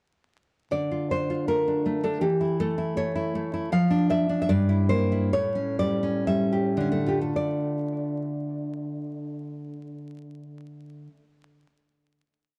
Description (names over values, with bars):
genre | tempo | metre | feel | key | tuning
romantic piece for solo classical guitar | 53-81 BPM | 2/4 | rubato | D minor | A4 = 440 Hz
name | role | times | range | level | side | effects
nylon-string guitar | solo | 0.7-11.7 s | G2 to F5 | -26 LUFS | equal | none
room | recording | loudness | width
wet studio reverb, RT60 0.6 s | dark, warm production, vinyl crackle | -26 LUFS | mono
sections
0.7-7.3 A section; 7.3-11.8 final chord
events
slowing down 3.0-7.3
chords
0.7 Dm; 2.2 A/E; 3.7 Dm/F; 4.5 Em7b5/G; 5.3 A7; 7.3 Dm